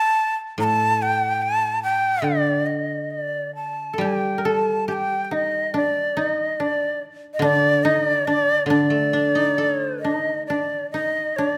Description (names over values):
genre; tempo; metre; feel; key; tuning
japanese traditional, Japanese chamber music; 65-74 BPM; 2/4; rubato; unclear; A4 = 439 Hz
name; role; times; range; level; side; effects
breathy bright shakuhachi; melody; 0.0-11.6 s; D5 to Bb5; -23 LUFS; equal; none
koto; accompaniment; 0.6-11.4 s; A2 to A4; -28 LUFS; equal; none
koto; second line; 3.9-11.6 s; D4 to Bb4; -27 LUFS; equal; none
room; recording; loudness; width
moderate scoring stage reverb, RT60 1.5 s; none; -22 LUFS; mono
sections
0.0-10.9 A section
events
none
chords
none